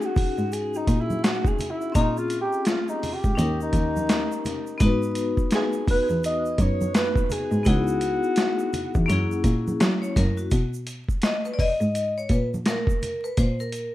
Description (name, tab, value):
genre	hip hop, jazz-hop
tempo	84 BPM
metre	4/4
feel	swing 60% on 16ths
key	unclear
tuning	A4 = 440 Hz
part	breathy alto saxophone	melody	0.0-9.5 s	D#4 to D#5	-27 LUFS	equal	analog delay
part	vibraphone with hard mallets	accompaniment	0.0-13.9 s	A#3 to D#5	-28 LUFS	left 4 dB	none
part	tube shaker and congas	percussion	0.0-13.9 s	none	-36 LUFS	right 1 dB	none
part	boom bap sampler-style drum kit	drums	0.2-13.9 s	hi-hat, kick drum, snare drum	-24 LUFS	equal	none
part	dark cello	bass	0.4-13.8 s	C#2 to F#3	-25 LUFS	equal	none
room	light reverb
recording	rough home demo mix, vinyl crackle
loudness	-21 LUFS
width	side -15 dB against mid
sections	0.0-10.5 A section; 10.5-13.9 A section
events	alto saxophone solo 0.0-10.5; vibraphone solo 10.5-13.9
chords	0.0 B6 (rootless); 1.9 A#m7; 3.4 D#7; 4.8 G#m7; 7.7 C#m7; 9.1 F#7; 10.5 G#madd9; 13.4 G#add9 (rootless)